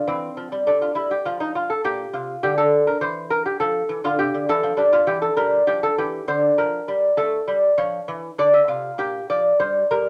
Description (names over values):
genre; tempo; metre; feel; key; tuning
classical, baroque-style dance for lute; 101 BPM; 3/4; rubato; F major; A4 = 440 Hz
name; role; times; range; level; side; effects
lute; solo; 0.0-10.1 s; Bb2 to E5; -21 LUFS; equal; none
room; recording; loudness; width
light reverb; none; -21 LUFS; mono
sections
0.0-10.1 A section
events
none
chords
0.1 C/E; 1.3 N.C.; 1.8 Bb; 3.0 N.C.; 3.6 F5; 4.8 Emadd11; 5.4 Gm; 7.2 A7; 8.4 Dm; 9.0 Bb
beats
| 0.06 0.66 1.25 | 1.84 2.43 3.02 | 3.60 4.19 4.79 | 5.38 5.98 6.58 | 7.18 7.78 8.38 | 8.98 9.60